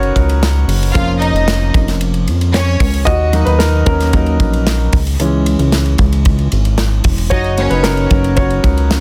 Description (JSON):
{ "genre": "piano-driven pop", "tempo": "113 BPM", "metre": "4/4", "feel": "straight", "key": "F# major", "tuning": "A4 = 439 Hz", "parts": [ { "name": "warm concert grand piano", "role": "accompaniment", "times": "0.0-9.0 s", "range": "E3 to D#5", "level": "-20 LUFS", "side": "equal", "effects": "none" }, { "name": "chorused synth bass", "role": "bass", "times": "0.0-9.0 s", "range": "E1 to E#2", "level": "-17 LUFS", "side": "equal", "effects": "none" }, { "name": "modern studio drum kit", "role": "drums", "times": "0.0-9.0 s", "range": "hi-hat, kick drum, ride cymbal, snare drum", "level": "-19 LUFS", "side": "equal", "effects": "none" }, { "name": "rich studio violin section", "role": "second line", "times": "0.9-2.9, 7.3-8.1 s", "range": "C#4 to E#5", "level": "-22 LUFS", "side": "equal", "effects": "none" } ], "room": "little or no reverb", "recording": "dense, heavily limited modern master", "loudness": "-14 LUFS", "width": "mono", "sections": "0.0-9.0 A section", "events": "grand piano solo 0.0-9.0", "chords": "0.0 F#; 1.0 A#m/E#; 3.1 D#m; 4.9 C#m; 7.3 F#" }